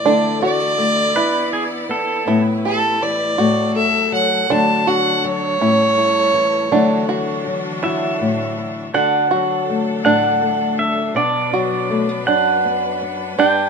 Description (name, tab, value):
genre	acoustic folk duo or small band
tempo	54 BPM (dotted quarters)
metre	6/8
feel	straight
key	D major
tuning	A4 = 442 Hz
part	warm fiddle	melody	0.0-7.4 s	A4 to A5	-18 LUFS	right 1 dB	none
part	nylon-string guitar	accompaniment	0.0-13.7 s	F#2 to A4	-21 LUFS	left 4 dB	none
part	bright chamber string section	sustained chords	0.0-13.7 s	A2 to D5	-28 LUFS	left 2 dB	none
part	open-back banjo	arpeggios	0.1-13.7 s	D4 to G4	-21 LUFS	right 5 dB	none
part	pedal steel guitar	second line	1.2-2.4, 7.8-13.7 s	G#4 to G5	-19 LUFS	right 1 dB	none
room	moderate studio reverb, RT60 0.7 s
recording	minimal, uncompressed stereo recording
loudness	-15 LUFS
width	side -5 dB against mid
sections	0.0-8.9 A section; 8.9-13.7 B section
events	fiddle solo 0.0-8.9; pedal steel guitar solo 8.9-13.7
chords	0.0 Dsus2; 1.2 E5; 2.3 Asus2; 3.4 F#m/A; 4.5 D; 5.6 A7; 6.7 Dadd9; 8.9 D; 11.2 Bm